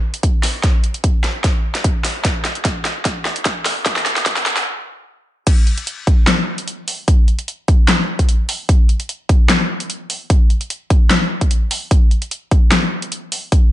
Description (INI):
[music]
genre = dubstep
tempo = 149 BPM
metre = 4/4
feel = half-time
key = none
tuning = none
[part]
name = big-room dance drum kit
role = drums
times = 0.1-13.6 s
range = crash cymbal, handclaps, hi-hat, snare drum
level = -18 LUFS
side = left 1 dB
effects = overdrive, high-pass filter on hats, small room ambience, high-pass filter on toms, high-pass filter on snare, high-pass filter on cymbals
[part]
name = electronic kick drum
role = drums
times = 0.2-13.6 s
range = none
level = -14 LUFS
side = equal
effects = overdrive, small room ambience
[sound]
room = light reverb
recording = dark, warm production, high-pass filter, nothing above 10.5 kHz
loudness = -14 LUFS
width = side -14 dB against mid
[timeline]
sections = 0.0-5.5 A section; 5.5-13.7 B section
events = build-up 0.0-5.5; drum fill 0.0-4.7; filter sweep 0.0-5.5; stop 4.7-5.5; drop 5.5-13.7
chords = none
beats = 0.23 | 0.64 1.04 1.44 1.84 | 2.25 2.65 3.05 3.45 | 3.86 4.26 4.66 5.07 | 5.47 5.87 6.27 6.67 | 7.08 7.48 7.88 8.29 | 8.69 9.09 9.49 9.90 | 10.30 10.70 11.11 11.51 | 11.91 12.31 12.72 13.12 | 13.52